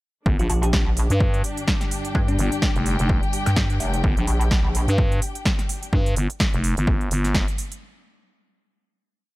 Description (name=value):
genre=bass house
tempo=127 BPM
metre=4/4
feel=swing 56% on 16ths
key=G minor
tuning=A4 = 440 Hz
part: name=dark analog pad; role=sustained chords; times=1.4-5.9 s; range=G3 to D5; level=-35 LUFS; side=right 1 dB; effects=none
part: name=growling FM bass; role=bass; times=0.3-7.5 s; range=F1 to G2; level=-22 LUFS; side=equal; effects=tube saturation, sidechain pumping
part: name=electronic kick drum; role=drums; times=0.3-7.5 s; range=none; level=-22 LUFS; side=equal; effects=overdrive
part: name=muted studio string section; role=texture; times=0.3-5.9 s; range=D4 to G5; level=-32 LUFS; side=left 3 dB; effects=sidechain pumping
part: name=bell-like FM electric piano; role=melody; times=0.4-2.8 s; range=D4 to G4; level=-30 LUFS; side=left 2 dB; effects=chorus, tape echo
part: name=big-room dance drum kit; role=drums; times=0.4-7.8 s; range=hi-hat, snare drum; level=-27 LUFS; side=right 1 dB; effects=overdrive
part: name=pulsing pluck wobble bass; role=bass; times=0.5-4.9 s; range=F1 to G2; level=-21 LUFS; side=equal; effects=chorus, overdrive, sidechain pumping
room=digital ambience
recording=none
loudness=-19 LUFS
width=side -19 dB against mid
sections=0.3-7.8 drop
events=drop 0.3-7.8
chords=0.3 G5